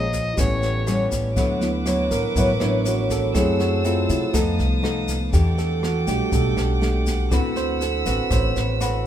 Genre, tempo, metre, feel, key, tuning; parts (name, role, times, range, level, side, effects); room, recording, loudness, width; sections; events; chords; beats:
bossa nova; 121 BPM; 4/4; straight; D major; A4 = 438 Hz
overdriven harmonica; melody; 0.0-1.1 s; C#5 to Eb5; -26 LUFS; left 2 dB
barky tine electric piano; accompaniment; 0.0-9.1 s; F#3 to Db5; -26 LUFS; right 4 dB
nylon-string guitar; accompaniment; 0.0-9.1 s; A2 to B4; -25 LUFS; left 3 dB
warm studio violin section; sustained chords; 0.0-9.1 s; Bb3 to E6; -30 LUFS; right 2 dB
upright bass; bass; 0.0-9.1 s; A1 to C3; -23 LUFS; equal
jazz brush drum kit; drums; 0.1-8.9 s; kick drum, rim click, snare drum; -27 LUFS; equal
tube shaker; percussion; 0.1-9.1 s; -35 LUFS; left 4 dB
light reverb; minimal, uncompressed stereo recording; -19 LUFS; side -10 dB against mid
0.0-1.4 A section; 1.4-9.1 B section
tine electric piano solo 1.4-9.1
0.4 A9; 1.4 D69; 3.4 F#m7b5; 4.3 F7#11; 5.3 Em11; 7.3 D13
0.38 0.87 | 1.37 1.86 2.36 2.85 | 3.35 3.85 4.34 4.84 | 5.33 5.83 6.33 6.82 | 7.32 7.82 8.31 8.81